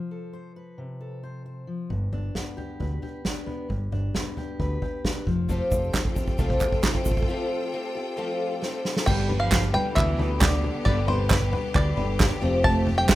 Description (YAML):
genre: indie folk with a building arrangement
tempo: 134 BPM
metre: 4/4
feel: straight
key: G mixolydian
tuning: A4 = 441 Hz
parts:
  - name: fingerpicked steel-string acoustic guitar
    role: accompaniment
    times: 0.0-7.3 s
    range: G2 to C5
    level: -34 LUFS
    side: left 2 dB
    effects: none
  - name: picked electric bass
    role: bass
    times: 1.9-13.1 s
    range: F1 to D2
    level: -26 LUFS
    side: equal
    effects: none
  - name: unplugged drum kit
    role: drums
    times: 1.9-13.2 s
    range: crash cymbal, kick drum, snare drum, toms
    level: -26 LUFS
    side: equal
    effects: none
  - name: picked twelve-string acoustic guitar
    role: accompaniment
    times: 5.5-13.2 s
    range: G2 to B4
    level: -29 LUFS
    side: left 2 dB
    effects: none
  - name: bright studio string section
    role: sustained chords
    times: 5.5-13.2 s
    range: D3 to G5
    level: -33 LUFS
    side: left 1 dB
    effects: none
  - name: egg shaker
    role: percussion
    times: 5.5-7.2 s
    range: none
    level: -43 LUFS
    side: right 6 dB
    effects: none
  - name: group handclap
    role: percussion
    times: 5.9-13.2 s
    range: none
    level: -28 LUFS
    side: right 4 dB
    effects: none
  - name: bluegrass banjo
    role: melody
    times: 9.1-13.2 s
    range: B4 to A5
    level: -28 LUFS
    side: equal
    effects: none
  - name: warm cello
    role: second line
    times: 9.1-13.2 s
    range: B2 to A3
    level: -32 LUFS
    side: right 3 dB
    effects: analog delay
room: light reverb, studio reverb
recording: rough home demo mix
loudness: -22 LUFS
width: side -15 dB against mid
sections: 0.0-1.9 A section; 1.9-9.1 B section; 9.1-13.2 C section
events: build-up 1.9-9.1; drum fill 1.9-7.3, 8.6-9.1; break 7.3-9.1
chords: 0.0 F; 1.9 G; 5.3 Fadd9; 9.1 G; 12.4 Fadd9